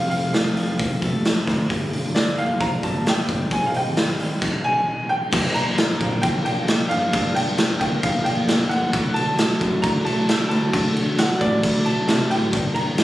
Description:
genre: indie rock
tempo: 133 BPM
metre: 4/4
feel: straight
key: G minor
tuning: A4 = 440 Hz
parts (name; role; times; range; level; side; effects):
- clear upright piano; melody; 0.0-13.0 s; D5 to Bb5; -25 LUFS; equal; tape echo
- electric guitar through a small old amp; riff; 0.0-13.0 s; F2 to Eb4; -30 LUFS; right 3 dB; ensemble chorus, tape echo
- twelve-string electric guitar; riff; 0.0-13.0 s; F2 to D4; -26 LUFS; left 3 dB; none
- picked electric bass; bass; 0.0-13.0 s; F1 to D3; -27 LUFS; equal; none
- raw garage drum kit; drums; 0.1-13.0 s; crash cymbal, hi-hat, kick drum, snare drum; -22 LUFS; equal; none
room: light reverb, small room ambience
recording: recorded on a phone in the room, club reverb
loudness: -18 LUFS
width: side -15 dB against mid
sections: 0.0-5.3 A section; 5.3-13.0 B section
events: none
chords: 0.0 F; 1.7 Gm7; 3.5 Abmaj7; 5.3 Gm7; 8.9 D; 12.5 Gm7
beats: 0.34 0.80 1.25 | 1.70 2.16 2.61 3.06 | 3.52 3.97 4.42 4.87 | 5.33 5.78 6.23 6.68 | 7.13 7.58 8.03 8.48 | 8.93 9.38 9.83 10.28 | 10.73 11.18 11.63 12.08 | 12.53 12.98

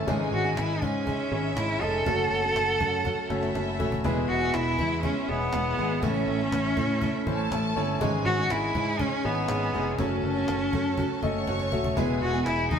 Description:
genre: piano-driven pop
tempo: 121 BPM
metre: 4/4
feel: straight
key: E major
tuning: A4 = 440 Hz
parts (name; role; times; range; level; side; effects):
- warm symphonic violin section; second line; 0.0-12.8 s; C#4 to C#6; -36 LUFS; equal; none
- warm concert grand piano; accompaniment; 0.0-12.8 s; G#2 to E5; -31 LUFS; left 3 dB; none
- fingerpicked steel-string acoustic guitar; riff; 0.0-12.8 s; E2 to A4; -33 LUFS; right 4 dB; none
- fingered electric bass; bass; 0.0-12.8 s; D#1 to A2; -32 LUFS; equal; none
- cajon; drums; 0.1-12.8 s; none; -35 LUFS; left 1 dB; none
- rich cello; melody; 0.3-12.8 s; B3 to A4; -28 LUFS; equal; none
room: wet stone room reverb, RT60 1.2 s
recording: band playing live in one room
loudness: -24 LUFS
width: side -7 dB against mid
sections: 0.0-4.0 A section; 4.0-12.8 A section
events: drum fill 3.1-4.0, 11.5-12.0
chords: 0.1 C#madd9/G#; 2.1 F#m; 4.0 E; 6.0 A; 8.0 C#madd9/G#; 10.0 F#m; 12.0 E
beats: | 0.08 0.57 1.07 1.56 | 2.06 2.56 3.05 3.55 | 4.04 4.54 5.03 5.53 | 6.03 6.52 7.02 7.51 | 8.01 8.50 9.00 9.49 | 9.99 10.48 10.98 11.48 | 11.97 12.47

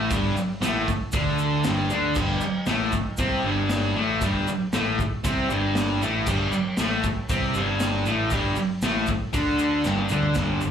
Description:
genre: garage rock duo or trio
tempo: 117 BPM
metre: 4/4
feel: straight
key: unclear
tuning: A4 = 440 Hz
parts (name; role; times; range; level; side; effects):
- thick fuzz guitar; riff; 0.0-10.7 s; G2 to D4; -23 LUFS; left 1 dB; distortion, slapback echo
- fuzz picked electric bass; bass; 0.0-10.7 s; G1 to D2; -28 LUFS; right 1 dB; overdrive
- raw garage drum kit; drums; 0.1-10.5 s; crash cymbal, hi-hat, kick drum, snare drum, toms; -29 LUFS; equal; none
- egg shaker; percussion; 0.1-10.7 s; none; -40 LUFS; right 2 dB; none
room: light reverb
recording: live gig heard through the venue's PA, club reverb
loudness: -21 LUFS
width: side -8 dB against mid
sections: 0.0-10.4 A section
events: drum fill 9.9-10.4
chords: 0.0 G5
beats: | 0.11 0.62 1.14 1.65 | 2.16 2.68 3.19 3.71 | 4.22 4.73 5.25 5.76 | 6.27 6.78 7.29 7.81 | 8.32 8.83 9.34 9.85 | 10.37

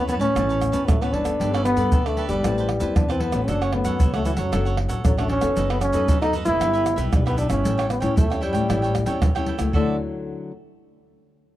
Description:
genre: samba and choro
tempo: 115 BPM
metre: 4/4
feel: straight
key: D major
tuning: A4 = 440 Hz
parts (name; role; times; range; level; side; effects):
- clear trombone; melody; 0.0-10.0 s; D3 to E4; -24 LUFS; equal; none
- cavaquinho; accompaniment; 0.0-10.0 s; D4 to A5; -33 LUFS; right 4 dB; none
- nylon-string guitar; accompaniment; 0.0-10.5 s; F#2 to B4; -28 LUFS; left 4 dB; none
- upright bass; bass; 0.0-10.0 s; F#1 to A2; -26 LUFS; equal; none
- tube shaker, pandeiro, surdo and tamborim; percussion; 0.1-9.9 s; none; -24 LUFS; right 1 dB; none
room: small room ambience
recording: dry, close 1970s-style studio recording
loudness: -19 LUFS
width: side -14 dB against mid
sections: 0.0-9.7 A section; 9.7-11.6 B section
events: none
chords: 0.0 Gadd9; 2.4 Amadd9; 3.5 F#m; 4.5 Dmaj7/F#; 5.6 B7/F#; 6.6 Em/G; 7.7 A7; 9.7 Dadd9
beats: 0.36 0.88 | 1.40 1.92 2.44 2.96 | 3.48 4.00 4.53 5.05 | 5.57 6.09 6.61 7.13 | 7.65 8.17 8.69 9.21 | 9.74 10.26

